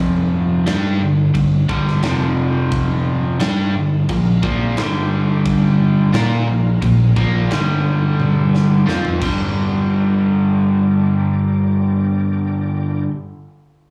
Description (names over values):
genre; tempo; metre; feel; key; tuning
blues rock power trio and southern rock; 88 BPM; 4/4; straight; G minor; A4 = 439 Hz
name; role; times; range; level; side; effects
overdriven electric guitar; riff; 0.0-13.1 s; F2 to Bb4; -19 LUFS; equal; spring reverb, slapback echo
growling fingered electric bass; bass; 0.0-13.0 s; F1 to Bb2; -23 LUFS; equal; overdrive
huge arena drum kit; drums; 0.7-9.4 s; crash cymbal, kick drum, snare drum, toms; -26 LUFS; equal; none
overdriven tonewheel organ; sustained chords; 4.1-13.0 s; Bb3 to Ab5; -36 LUFS; equal; slow rotary speaker, chorus vibrato
room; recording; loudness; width
light reverb; live gig heard through the venue's PA, club reverb, small room ambience; -17 LUFS; mono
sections
0.0-9.5 A section; 9.5-12.3 B section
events
drum fill 8.2-9.5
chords
0.0 F5; 0.7 G5; 2.0 F5; 3.4 G5; 4.1 Bb5; 4.8 G5; 6.1 Bb5; 7.5 G5; 8.9 Bb5; 9.2 Gm